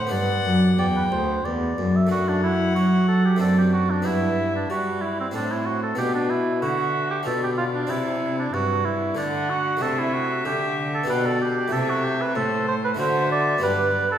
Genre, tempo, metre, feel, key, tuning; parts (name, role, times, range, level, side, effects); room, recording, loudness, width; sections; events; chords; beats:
classical, baroque-style sonata movement with continuo; 94 BPM; 3/4; straight; G major; A4 = 439 Hz
warm violin; melody; 0.0-14.2 s; B4 to G5; -32 LUFS; left 4 dB
warm oboe; second line; 0.0-14.2 s; C4 to E5; -24 LUFS; right 2 dB
harpsichord; accompaniment; 0.0-14.2 s; D2 to D5; -25 LUFS; equal
rich cello; bass; 0.0-14.2 s; D2 to G3; -26 LUFS; right 1 dB
wet recital hall reverb, RT60 1.7 s; recorded in a church or concert hall; -20 LUFS; side -10 dB against mid
0.0-2.1 A section; 2.1-14.2 A section
0.1 G; 2.1 D/F#; 3.4 D7/F#; 4.1 G; 5.3 D5/A; 6.0 Bmadd11; 7.3 Bm7b5; 7.9 C; 9.2 D; 9.8 D5/C; 11.1 G/B; 11.7 Am/C; 13.0 D; 13.6 G
| 0.12 0.78 1.45 | 2.12 2.77 3.41 | 4.06 4.70 5.34 | 5.98 6.62 7.26 | 7.90 8.54 9.17 | 9.81 10.45 11.08 | 11.72 12.35 12.99 | 13.63